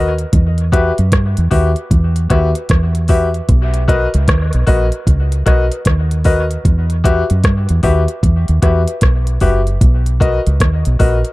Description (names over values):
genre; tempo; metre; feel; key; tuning
dub reggae; 76 BPM; 4/4; swing 64% on 16ths; unclear; A4 = 440 Hz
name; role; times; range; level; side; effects
clear grand piano; stabs; 0.0-11.2 s; F#4 to E5; -19 LUFS; left 3 dB; dub echo
deep dub fingered electric bass; bass; 0.0-11.2 s; F#1 to G2; -14 LUFS; equal; none
organic electronic drum kit; drums; 0.2-11.3 s; hi-hat, kick drum, rim click; -14 LUFS; equal; none
room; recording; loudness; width
light reverb; dark, warm production; -11 LUFS; side -19 dB against mid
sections
0.0-11.3 A section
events
none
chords
0.3 Emadd9; 3.5 Bmaj7; 6.7 Emadd9; 9.8 Bmaj7